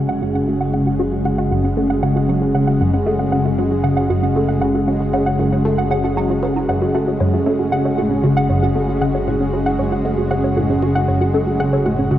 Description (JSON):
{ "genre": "ambient, sequencer-driven space music", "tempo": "116 BPM", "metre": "4/4", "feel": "straight", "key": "F# minor", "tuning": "A4 = 440 Hz", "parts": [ { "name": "lush unison pad", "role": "sustained chords", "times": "0.0-12.2 s", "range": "C#3 to F#4", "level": "-18 LUFS", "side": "equal", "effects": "chorus" }, { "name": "soft round pluck", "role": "arpeggios", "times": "0.0-12.2 s", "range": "C#4 to F#5", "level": "-23 LUFS", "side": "right 2 dB", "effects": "chorus, auto-pan, tape echo, shimmer reverb" }, { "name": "resonant blip pluck", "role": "riff", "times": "0.0-12.2 s", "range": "F#2 to A3", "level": "-21 LUFS", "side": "left 1 dB", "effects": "phaser, tape echo" }, { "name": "analog drone", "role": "bass", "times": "0.0-12.2 s", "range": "F#1", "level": "-26 LUFS", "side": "equal", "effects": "chorus" } ], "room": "wet plate reverb, RT60 3.2 s", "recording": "worn, warbling old tape, cassette tape, warbly pitch drift", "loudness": "-15 LUFS", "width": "side -12 dB against mid", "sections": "0.0-12.2 A section", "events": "none", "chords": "0.0 F#sus2", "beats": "0.48 | 1.00 1.51 2.03 2.55 | 3.07 3.58 4.10 4.62 | 5.13 5.65 6.17 6.69 | 7.20 7.72 8.24 8.76 | 9.27 9.79 10.31 10.82 | 11.34 11.86" }